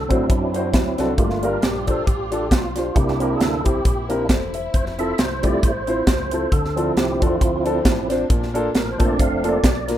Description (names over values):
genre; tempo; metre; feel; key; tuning
uptempo gospel; 135 BPM; 4/4; swing 56% on 8ths; unclear; A4 = 441 Hz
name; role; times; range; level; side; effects
dark concert grand piano; accompaniment; 0.0-10.0 s; G2 to E5; -24 LUFS; left 1 dB; none
rich studio string section; sustained chords; 0.0-10.0 s; F3 to F4; -38 LUFS; equal; none
tonewheel organ; sustained chords; 0.0-9.9 s; F3 to F5; -23 LUFS; right 2 dB; slow rotary speaker, overdrive, chorus vibrato
fingered electric bass; bass; 0.0-10.0 s; E1 to A2; -30 LUFS; equal; none
crisp fusion drum kit; drums; 0.1-10.0 s; hi-hat, kick drum, snare drum; -20 LUFS; equal; none
room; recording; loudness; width
light reverb; rough home demo mix; -17 LUFS; side -11 dB against mid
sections
0.0-10.0 A section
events
tonewheel organ solo 0.0-10.0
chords
0.0 D7; 1.2 Gm7; 3.0 C7; 4.7 Fmaj7; 6.5 Dm7; 8.3 Bbmaj7